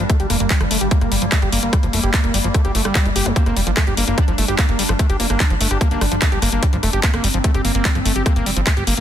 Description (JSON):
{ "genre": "psychedelic trance", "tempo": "147 BPM", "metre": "4/4", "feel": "straight", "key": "G minor", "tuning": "A4 = 440 Hz", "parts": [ { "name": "evolving wavetable pad", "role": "sustained chords", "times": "0.0-9.0 s", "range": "G3 to D4", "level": "-24 LUFS", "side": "equal", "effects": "chorus, built-in reverb, sidechain pumping" }, { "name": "overdriven acid bass", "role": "riff", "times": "0.0-9.0 s", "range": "F3 to G4", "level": "-24 LUFS", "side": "equal", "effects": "distortion, auto-pan, sidechain pumping, tape echo" }, { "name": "plucky analog bass", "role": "bass", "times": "0.0-9.0 s", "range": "F1 to G1", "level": "-21 LUFS", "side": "equal", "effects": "none" }, { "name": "drum and bass drum kit", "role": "drums", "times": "0.1-9.0 s", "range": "handclaps, hi-hat, rim click", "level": "-22 LUFS", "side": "left 1 dB", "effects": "overdrive, studio reverb" }, { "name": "electronic kick drum", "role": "drums", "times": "0.1-8.7 s", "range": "none", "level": "-17 LUFS", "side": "equal", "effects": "overdrive, studio reverb" }, { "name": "metallic wobble bass", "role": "second line", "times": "3.4-6.1 s", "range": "C4 to D4", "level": "-37 LUFS", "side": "right 5 dB", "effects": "none" } ], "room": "little or no reverb", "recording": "dense, heavily limited modern master", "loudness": "-15 LUFS", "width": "side -10 dB against mid", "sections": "0.0-9.0 A section", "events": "filter sweep on acid bass 0.0-9.0", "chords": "0.0 G5" }